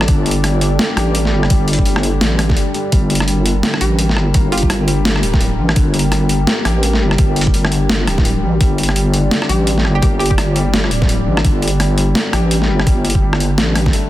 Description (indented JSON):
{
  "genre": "half-time drum and bass",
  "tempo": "169 BPM",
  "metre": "4/4",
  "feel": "swing 60% on 16ths, half-time",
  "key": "G minor",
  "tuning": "A4 = 440 Hz",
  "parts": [
    { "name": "dark analog pad", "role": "sustained chords", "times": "0.0-14.1 s", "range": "G3 to D5", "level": "-23 LUFS", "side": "right 1 dB", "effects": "chorus, sidechain pumping" },
    { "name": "felt-muted upright piano", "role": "arpeggios", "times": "0.0-14.1 s", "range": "D3 to G4", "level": "-22 LUFS", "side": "left 4 dB", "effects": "dub echo" },
    { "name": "deep soft wobble bass", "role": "bass", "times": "0.0-13.9 s", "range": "D1 to A1", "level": "-16 LUFS", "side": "equal", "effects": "chorus" },
    { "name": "boom bap sampler-style drum kit", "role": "drums", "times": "0.0-14.0 s", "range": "hi-hat, rim click, snare drum", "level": "-18 LUFS", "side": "equal", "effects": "overdrive, small room ambience" },
    { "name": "electronic kick drum", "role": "drums", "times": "0.1-13.9 s", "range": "none", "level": "-15 LUFS", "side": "equal", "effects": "overdrive, small room ambience" },
    { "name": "hollow square pluck", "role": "melody", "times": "3.8-5.0, 9.5-10.4 s", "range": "F4 to G4", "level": "-25 LUFS", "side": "right 1 dB", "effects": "chorus, tape echo" }
  ],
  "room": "little or no reverb",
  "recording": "dense, heavily limited modern master",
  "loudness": "-12 LUFS",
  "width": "side -14 dB against mid",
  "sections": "0.0-14.1 A section",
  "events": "none",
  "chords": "0.0 Gm",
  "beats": "| 0.08 0.44 0.79 1.15 | 1.50 1.86 2.21 2.57 | 2.92 3.28 3.63 3.99 | 4.34 4.70 5.05 5.41 | 5.76 6.12 6.47 6.83 | 7.18 7.54 7.89 8.25 | 8.60 8.96 9.31 9.67 | 10.02 10.38 10.73 11.09 | 11.44 11.80 12.15 12.51 | 12.86 13.22 13.57 13.93"
}